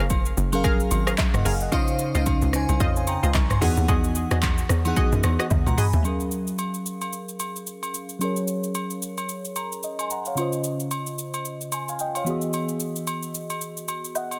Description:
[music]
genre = amapiano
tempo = 111 BPM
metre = 4/4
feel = swing 58% on 16ths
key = Gb lydian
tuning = A4 = 440 Hz
[part]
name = crystalline FM electric piano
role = accompaniment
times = 0.0-14.4 s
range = Db3 to Db6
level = -30 LUFS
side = equal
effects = chorus, low-pass filter
[part]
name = punchy chord stab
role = stabs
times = 0.0-5.9 s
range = F4 to F5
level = -33 LUFS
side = equal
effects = chorus, digital delay
[part]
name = tight log drum bass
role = bass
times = 0.0-6.0 s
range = Gb1 to F#2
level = -26 LUFS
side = equal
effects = none
[part]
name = deep house drum kit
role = drums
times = 0.1-14.4 s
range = handclaps, hi-hat, kick drum, rim click, shaker, toms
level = -28 LUFS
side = equal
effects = none
[part]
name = agogo bells and woodblock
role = percussion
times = 0.1-14.4 s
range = none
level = -36 LUFS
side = equal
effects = none
[sound]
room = light reverb, digital ambience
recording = dense, heavily limited modern master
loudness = -25 LUFS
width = mono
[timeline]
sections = 0.0-6.0 A section; 6.0-14.4 B section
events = drop 0.0-6.0; drum fill 5.5-6.0; filter sweep on FM electric piano 6.0-14.4; FM electric piano fill 9.3-10.4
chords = 0.0 Gbmaj9; 1.7 Dbmaj9; 3.6 Emaj9; 6.0 Gbmaj9; 10.4 Dbmaj9; 12.3 Emaj9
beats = 0.10 0.64 1.18 | 1.72 2.27 2.81 3.35 | 3.89 4.43 4.97 5.51 | 6.05 6.59 7.13 7.67 | 8.21 8.75 9.29 9.83 | 10.37 10.91 11.45 11.99 | 12.54 13.08 13.62 14.16

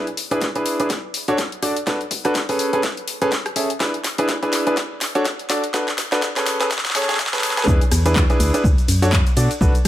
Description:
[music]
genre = piano house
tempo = 124 BPM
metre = 4/4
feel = swing 58% on 16ths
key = unclear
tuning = A4 = 439 Hz
[part]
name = clear concert grand piano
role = riff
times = 0.0-9.7 s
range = C#4 to E5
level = -21 LUFS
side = equal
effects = sidechain pumping, low-pass filter, dub echo
[part]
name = house drum kit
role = drums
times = 0.1-9.9 s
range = handclaps, hi-hat, ride cymbal, rim click, shaker, snare drum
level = -23 LUFS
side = left 1 dB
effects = overdrive, high-pass filter on perc, high-pass filter on snare, high-pass filter on hats, high-pass filter on cymbals
[part]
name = electronic kick drum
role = drums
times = 0.4-9.9 s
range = none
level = -20 LUFS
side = equal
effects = high-pass filter on kick
[part]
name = organ-like FM bass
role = bass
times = 7.7-9.9 s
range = B1 to B2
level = -18 LUFS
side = equal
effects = sidechain pumping
[sound]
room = light reverb, digital ambience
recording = high-pass filter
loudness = -17 LUFS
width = side -13 dB against mid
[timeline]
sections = 0.0-7.7 A section; 7.7-9.9 B section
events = build-up 0.0-7.7; drum fill 0.0-7.7; drop 7.7-9.9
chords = 0.0 E7; 0.9 Dmaj7; 1.6 Bm7; 2.6 Amaj9; 3.8 E7; 4.8 Dmaj7; 5.5 Bm7; 6.5 Amaj9; 7.7 E7; 8.6 D; 9.4 Bm7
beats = 0.42 0.90 1.38 | 1.87 2.35 2.83 3.32 | 3.80 4.29 4.77 5.25 | 5.74 6.22 6.71 7.19 | 7.67 8.16 8.64 9.12 | 9.61

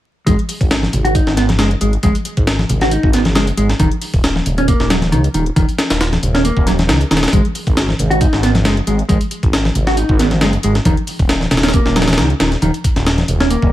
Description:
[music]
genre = breakbeat, breaks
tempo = 136 BPM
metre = 4/4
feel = swing 54% on 16ths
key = unclear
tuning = A4 = 441 Hz
[part]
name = mellow electric guitar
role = riff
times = 0.3-13.7 s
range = D#3 to F#4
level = -18 LUFS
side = equal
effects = low-pass filter, tape echo
[part]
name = phased detuned saw bass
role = bass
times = 0.3-13.7 s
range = D#1 to C#2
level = -17 LUFS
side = equal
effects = phaser
[part]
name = breakbeat sampler-style drum kit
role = drums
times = 0.3-13.7 s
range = hi-hat, kick drum, snare drum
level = -16 LUFS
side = equal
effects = studio reverb
[part]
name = electronic hi-hat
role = drums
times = 0.3-13.6 s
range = none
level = -32 LUFS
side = left 4 dB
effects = studio reverb
[part]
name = congas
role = percussion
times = 0.3-13.4 s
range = none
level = -22 LUFS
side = left 1 dB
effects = none
[sound]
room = little or no reverb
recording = vinyl crackle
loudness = -12 LUFS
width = side -14 dB against mid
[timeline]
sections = 0.3-13.7 A section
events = none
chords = 0.3 G#7(no3); 3.8 D#7(no3); 7.3 G#7(no3); 10.9 D#5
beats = | 0.27 0.71 1.15 1.59 | 2.04 2.48 2.92 3.36 | 3.80 4.24 4.68 5.12 | 5.56 6.01 6.45 6.89 | 7.33 7.77 8.21 8.65 | 9.09 9.54 9.98 10.42 | 10.86 11.30 11.74 12.18 | 12.62 13.06 13.51

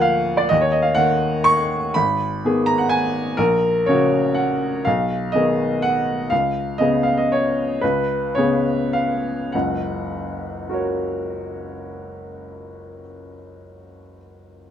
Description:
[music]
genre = classical, piano waltz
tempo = 96-134 BPM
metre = 3/4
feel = rubato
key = F# major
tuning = A4 = 440 Hz
[part]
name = clear upright piano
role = solo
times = 0.0-14.7 s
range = F#1 to C#6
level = -18 LUFS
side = equal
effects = none
[sound]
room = light reverb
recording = none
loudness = -18 LUFS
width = side -9 dB against mid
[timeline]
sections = 0.0-9.5 A section; 9.5-12.9 B section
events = slowing down 5.6-9.5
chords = 0.0 A#7/D; 0.5 D#m; 2.0 G#m; 3.4 F#/A#; 4.9 G#m/B; 6.3 C#7; 9.5 F#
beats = 0.05 | 0.52 0.98 1.47 | 1.95 2.43 2.92 | 3.39 3.87 4.37 | 4.85 5.33 5.83 | 6.31 6.80 7.31 | 7.82 8.35 8.93 | 9.54 10.10 10.68 | 11.25 11.81 12.38

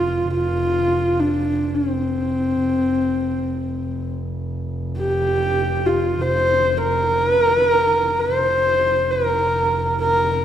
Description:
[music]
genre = mongolian traditional, Mongolian folk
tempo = free time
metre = none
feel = none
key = F zhi mode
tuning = A4 = 440 Hz
[part]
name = dark horsehead fiddle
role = melody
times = 0.0-10.4 s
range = C4 to C5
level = -18 LUFS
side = equal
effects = none
[part]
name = dark double bass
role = drone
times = 0.0-10.4 s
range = F1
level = -25 LUFS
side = equal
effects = none
[sound]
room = wet scoring stage reverb, RT60 1.9 s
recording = dark, warm production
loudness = -17 LUFS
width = side -10 dB against mid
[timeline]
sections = 0.0-10.4 A section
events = none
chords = none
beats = free time

